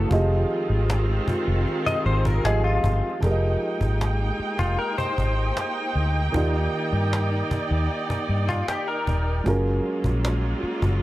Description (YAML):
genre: contemporary R&B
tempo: 77 BPM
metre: 4/4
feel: straight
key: F dorian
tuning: A4 = 445 Hz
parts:
  - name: felt-muted upright piano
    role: accompaniment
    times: 0.0-11.0 s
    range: Eb3 to Eb5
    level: -28 LUFS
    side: right 2 dB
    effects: none
  - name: rich studio string section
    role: sustained chords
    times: 0.0-11.0 s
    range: C#3 to G5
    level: -28 LUFS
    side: right 1 dB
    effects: none
  - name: direct-recorded clean electric guitar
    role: arpeggios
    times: 0.0-9.4 s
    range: F4 to Eb5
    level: -28 LUFS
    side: left 3 dB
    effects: ensemble chorus, analog delay
  - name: vintage muted fingered electric bass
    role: bass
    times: 0.0-11.0 s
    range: Eb1 to G2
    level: -23 LUFS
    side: equal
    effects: none
  - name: cajon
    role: drums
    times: 0.1-11.0 s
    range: none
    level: -29 LUFS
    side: equal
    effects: none
room: small room ambience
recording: dry, gritty hardware recording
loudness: -21 LUFS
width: side -16 dB against mid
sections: 0.0-3.2 A section; 3.2-11.0 B section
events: none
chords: 0.1 Fm7; 3.2 Fm11; 6.3 Ebmaj7; 9.5 Gbmaj9